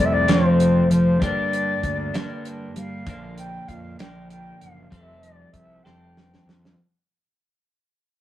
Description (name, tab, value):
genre	psychedelic rock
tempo	65 BPM (dotted quarters)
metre	6/8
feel	straight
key	unclear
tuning	A4 = 437 Hz
part	silver concert flute	melody	0.0-6.5 s	C5 to G5	-25 LUFS	left 3 dB	none
part	twelve-string electric guitar	riff	0.0-6.8 s	F2 to A4	-25 LUFS	equal	none
part	fuzz fingered electric bass	bass	0.0-6.7 s	F1 to G3	-24 LUFS	equal	overdrive
part	damped 70s drum kit	drums	0.3-6.8 s	hi-hat, kick drum, snare drum	-25 LUFS	right 1 dB	none
room	wet studio reverb, RT60 0.6 s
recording	rough rehearsal-room recording, cassette tape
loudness	-17 LUFS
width	side -13 dB against mid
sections	0.0-6.8 A section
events	fade-out 0.0-6.8; drum fill 5.8-6.8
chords	0.0 F; 1.2 Gm; 3.1 Bb; 4.9 Fadd9